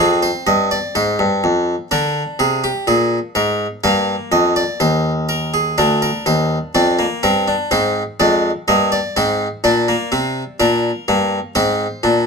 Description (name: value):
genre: classical, baroque-style 3-part fugue for harpsichord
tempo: 62 BPM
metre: 4/4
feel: straight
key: unclear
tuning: A4 = 442 Hz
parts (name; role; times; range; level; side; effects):
- harpsichord; solo; 0.0-12.3 s; D2 to F5; -14 LUFS; equal; none
room: moderate studio reverb, RT60 0.6 s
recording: dark, warm production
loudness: -15 LUFS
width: side -5 dB against mid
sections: 0.0-5.8 A section; 5.8-12.3 B section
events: none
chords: 0.0 Fm7; 1.9 Bb7; 3.8 Eb; 5.8 Bb/D; 7.7 Ab; 9.6 Gm/Bb; 11.6 Abadd9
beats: 0.95 | 1.92 2.88 3.84 4.81 | 5.78 6.75 7.72 8.68 | 9.64 10.60 11.56